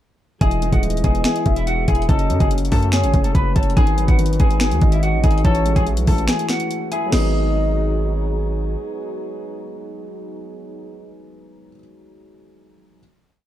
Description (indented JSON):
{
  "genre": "hip hop, trap",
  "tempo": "143 BPM",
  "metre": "4/4",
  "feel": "half-time",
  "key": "G# phrygian",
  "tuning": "A4 = 443 Hz",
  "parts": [
    { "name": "mellow electric guitar", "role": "melody", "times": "0.4-8.3 s", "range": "E4 to B5", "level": "-24 LUFS", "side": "left 2 dB", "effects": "ping-pong delay" },
    { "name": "soft octave-layered synth lead", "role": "second line", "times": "0.4-8.3 s", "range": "B4 to E5", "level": "-28 LUFS", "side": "right 2 dB", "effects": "chorus, phaser, ping-pong delay" },
    { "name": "felt-muted upright piano", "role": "accompaniment", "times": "0.4-13.0 s", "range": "C#3 to C#5", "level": "-26 LUFS", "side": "left 4 dB", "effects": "none" },
    { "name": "mellow French horn section", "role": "sustained chords", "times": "0.4-11.2 s", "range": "E3 to G#4", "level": "-31 LUFS", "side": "right 2 dB", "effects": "none" },
    { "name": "distorted 808-style bass", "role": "bass", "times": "0.4-8.8 s", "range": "D#1 to F#2", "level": "-19 LUFS", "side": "equal", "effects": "distortion" },
    { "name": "trap drum kit", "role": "drums", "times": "0.4-7.2 s", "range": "crash cymbal, finger snaps, hi-hat, kick drum, snare drum", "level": "-19 LUFS", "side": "equal", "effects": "none" }
  ],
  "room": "light reverb",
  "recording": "dark, warm production",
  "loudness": "-16 LUFS",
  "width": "side -12 dB against mid",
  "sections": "0.4-7.1 hook; 7.1-10.5 final chord",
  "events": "break 6.3-7.1",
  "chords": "0.4 Emaj7; 2.1 F#m; 3.8 G#m7; 5.4 Amaj7; 7.1 G#m7",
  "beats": "| 0.41 0.83 1.25 1.67 | 2.09 2.51 2.93 3.35 | 3.77 4.19 4.61 5.03 | 5.45 5.87 6.29 6.71 | 7.12 7.54 7.96 8.38 | 8.80 9.22 9.64 10.06"
}